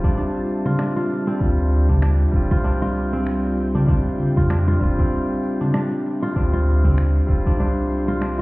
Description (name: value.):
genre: organic downtempo.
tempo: 97 BPM.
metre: 4/4.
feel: swing 57% on 16ths.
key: D minor.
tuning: A4 = 440 Hz.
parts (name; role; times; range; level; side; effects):
barky tine electric piano; accompaniment; 0.0-8.4 s; G3 to F4; -25 LUFS; left 1 dB; overdrive, sidechain pumping, digital delay, shimmer reverb.
airy breathy pad; sustained chords; 0.0-8.4 s; F4 to C6; -34 LUFS; right 1 dB; chorus, sidechain pumping, shimmer reverb.
kora; arpeggios; 0.0-8.4 s; C4 to F4; -25 LUFS; equal; digital delay, shimmer reverb.
warm sub bass; bass; 0.0-8.4 s; D1 to F2; -20 LUFS; equal; tube saturation, sidechain pumping.
electronic kick drum; drums; 0.0-7.6 s; none; -20 LUFS; equal; none.
electronic shaker and finger snaps; drums; 0.0-8.4 s; none; -40 LUFS; equal; none.
darbuka; percussion; 0.3-8.4 s; none; -26 LUFS; equal; none.
room: light reverb, digital ambience.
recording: heard muffled through a wall, stone room reverb, EQ.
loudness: -17 LUFS.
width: side -22 dB against mid.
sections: 0.0-8.4 A section.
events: none.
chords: 0.0 Dmadd9.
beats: 0.17 0.79 | 1.41 2.03 2.65 3.27 | 3.88 4.50 5.12 5.74 | 6.36 6.98 7.60 8.21.